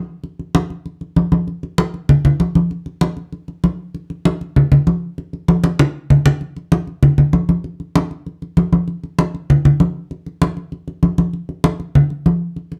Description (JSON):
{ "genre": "latin", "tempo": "194 BPM", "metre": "4/4", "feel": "straight", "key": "none", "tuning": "none", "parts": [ { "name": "congas", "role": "percussion", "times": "0.2-12.8 s", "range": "none", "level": "-16 LUFS", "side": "equal", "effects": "none" } ], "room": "wet studio reverb, RT60 0.6 s", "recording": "none", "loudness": "-17 LUFS", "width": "mono", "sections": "0.0-6.4 A section; 6.4-12.8 B section", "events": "drum fill 5.5-6.4", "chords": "none" }